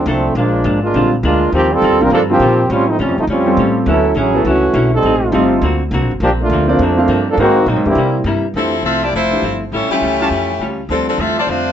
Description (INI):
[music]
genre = jazz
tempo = 205 BPM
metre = 4/4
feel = swing 62% on 8ths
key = F major from 8.6 s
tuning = A4 = 440 Hz
[part]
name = clear trombone section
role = second line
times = 0.0-8.2 s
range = B#2 to Bb4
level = -14 LUFS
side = right 1 dB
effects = none
[part]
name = upright bass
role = bass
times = 0.0-11.7 s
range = F1 to C3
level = -20 LUFS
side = equal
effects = none
[part]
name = vintage hollow-body jazz guitar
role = accompaniment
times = 0.1-11.7 s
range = G2 to C5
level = -21 LUFS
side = left 2 dB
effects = none
[part]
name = clear concert grand piano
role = accompaniment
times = 0.9-11.7 s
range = D3 to F5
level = -18 LUFS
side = equal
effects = none
[part]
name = bright saxophone section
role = melody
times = 8.6-11.7 s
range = E3 to E5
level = -16 LUFS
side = left 2 dB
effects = plate reverb
[part]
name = warm trumpet section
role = stabs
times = 9.0-11.5 s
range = F4 to A5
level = -22 LUFS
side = right 1 dB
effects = none
[sound]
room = light reverb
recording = nothing above 7.9 kHz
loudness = -12 LUFS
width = side -9 dB against mid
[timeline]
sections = 0.0-8.6 A section; 8.6-11.7 B section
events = trombone section solo 0.0-8.6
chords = 0.4 Bb7; 1.5 Eb69; 2.7 A7alt; 3.9 Dmaj9; 5.0 Am7b5; 5.6 Daug7; 6.2 Gm11; 7.4 Ab9; 8.0 C7; 8.6 Fmaj7; 9.7 A7b13; 10.9 Dm7